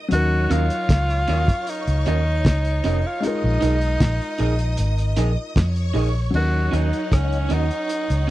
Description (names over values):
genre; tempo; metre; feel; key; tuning
lovers rock reggae; 77 BPM; 4/4; straight; Eb minor; A4 = 440 Hz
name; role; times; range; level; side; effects
phased string machine; second line; 0.0-8.3 s; Eb4 to Eb6; -32 LUFS; right 1 dB; ensemble chorus, phaser
warm baby grand piano; accompaniment; 0.0-8.3 s; Gb3 to Bb4; -30 LUFS; left 3 dB; none
breathy tenor saxophone; melody; 0.1-8.3 s; Db4 to Gb4; -26 LUFS; equal; tape echo
vintage muted fingered electric bass; bass; 0.1-8.3 s; F1 to F2; -20 LUFS; equal; none
cloth-damped thuddy drum kit; drums; 0.1-8.3 s; crash cymbal, hi-hat, kick drum, rim click, snare drum; -22 LUFS; equal; none
electric guitar through a small old amp; stabs; 0.5-8.3 s; Db4 to Eb5; -25 LUFS; right 4 dB; wide subtle chorus
room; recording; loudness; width
little or no reverb; dry, close 1970s-style studio recording; -18 LUFS; side -16 dB against mid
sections
0.0-6.3 A section; 6.3-8.3 B section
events
none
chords
0.1 Ebm7; 3.2 Bb7sus4; 6.3 Ebm7